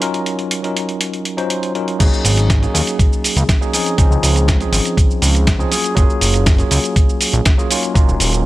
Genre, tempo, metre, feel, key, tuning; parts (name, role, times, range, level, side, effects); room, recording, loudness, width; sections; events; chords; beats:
nu-disco, nu disco; 121 BPM; 4/4; straight; Ab mixolydian; A4 = 441 Hz
tine electric piano; accompaniment; 0.0-8.5 s; F3 to C5; -20 LUFS; equal; medium stereo tremolo, sidechain pumping, analog delay
dusty soul sampler-style drum kit; drums; 0.0-8.4 s; crash cymbal, hi-hat, shaker, snare drum; -19 LUFS; right 1 dB
fat analog bass; bass; 2.0-8.5 s; Eb1 to Eb2; -16 LUFS; equal
electronic kick drum; drums; 2.0-8.1 s; -14 LUFS; equal
little or no reverb; -13 LUFS; side -17 dB against mid
0.0-2.0 A section; 2.0-8.5 B section
drop 2.0-8.5
0.0 Ebm9; 2.0 Ab7sus4; 3.7 Dbmaj7; 5.7 Gbmaj7; 7.7 Ebm9
| 0.02 0.51 1.01 1.51 | 2.00 2.50 2.99 3.49 | 3.98 4.48 4.98 5.47 | 5.97 6.46 6.96 7.46 | 7.95 8.45